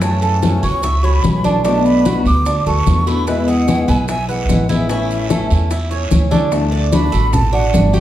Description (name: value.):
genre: latin, Cuban son and guajira.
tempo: 148 BPM.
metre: 4/4.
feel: straight.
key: D major.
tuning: A4 = 440 Hz.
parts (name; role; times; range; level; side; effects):
breathy concert flute; melody; 0.0-7.9 s; E5 to D6; -22 LUFS; right 1 dB; none.
fingerpicked swing-style acoustic guitar; accompaniment; 0.0-8.0 s; B2 to F#4; -19 LUFS; left 3 dB; none.
Cuban tres; arpeggios; 0.0-8.0 s; D4 to E5; -22 LUFS; right 6 dB; none.
upright bass; bass; 0.0-8.0 s; G1 to F#2; -17 LUFS; right 1 dB; none.
bongos; percussion; 0.0-8.0 s; none; -26 LUFS; left 4 dB; none.
congas; percussion; 0.0-8.0 s; none; -20 LUFS; left 2 dB; none.
guiro; percussion; 0.0-8.0 s; none; -32 LUFS; right 6 dB; none.
maracas; percussion; 0.0-8.0 s; none; -35 LUFS; right 4 dB; none.
room: moderate large studio reverb, RT60 0.8 s.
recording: heard from further back in the room.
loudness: -13 LUFS.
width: side -12 dB against mid.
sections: 0.0-6.5 A section; 6.5-8.0 B section.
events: drum fill 6.1-6.5.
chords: 0.0 F#m7; 1.6 Bm7; 3.3 E; 4.9 A; 6.5 D.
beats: | 0.02 0.43 0.83 1.24 | 1.65 2.06 2.46 2.87 | 3.27 3.68 4.09 4.49 | 4.90 5.30 5.71 6.11 | 6.52 6.92 7.33 7.73.